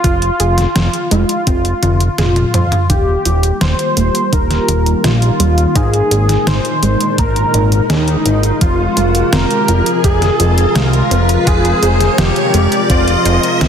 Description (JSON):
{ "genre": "synthwave", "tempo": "84 BPM", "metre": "4/4", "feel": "straight", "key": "F minor", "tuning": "A4 = 440 Hz", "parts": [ { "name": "wide unison lead", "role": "melody", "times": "0.0-13.6 s", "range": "Eb4 to C5", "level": "-16 LUFS", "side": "equal", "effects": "analog chorus, cassette tape, ping-pong delay" }, { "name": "analog pluck", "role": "arpeggios", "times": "0.0-13.7 s", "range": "Eb3 to C5", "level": "-22 LUFS", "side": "right 2 dB", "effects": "chorus, tape echo" }, { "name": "fat analog bass", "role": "bass", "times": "0.0-13.7 s", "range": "Eb1 to F2", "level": "-15 LUFS", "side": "equal", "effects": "tube saturation, sidechain pumping" }, { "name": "detuned 8-bit digital drum machine", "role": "drums", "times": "0.0-13.7 s", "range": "hi-hat, snare drum, toms", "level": "-19 LUFS", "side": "equal", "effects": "overdrive" }, { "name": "electronic kick drum", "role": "drums", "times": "0.0-13.0 s", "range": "none", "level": "-15 LUFS", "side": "equal", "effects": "overdrive" }, { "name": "soft supersaw", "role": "sustained chords", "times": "2.9-13.7 s", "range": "Bb2 to Bb4", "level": "-19 LUFS", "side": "equal", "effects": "sidechain pumping, low-pass filter" }, { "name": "riser", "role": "sound effects", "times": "5.7-13.7 s", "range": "none", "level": "-24 LUFS", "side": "equal", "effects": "none" } ], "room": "wet concert hall reverb, RT60 2.0 s", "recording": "dense, heavily limited modern master", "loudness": "-11 LUFS", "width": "side -8 dB against mid", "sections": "0.0-2.9 A section; 2.9-13.7 B section", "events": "drum fill 1.8-2.9; filter sweep on supersaw synth 2.9-13.7; filter sweep on synth arpeggio sound 2.9-13.7; riser 5.7-13.7", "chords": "0.0 Fm; 2.9 Ebadd9; 5.8 Absus2; 8.6 Fm" }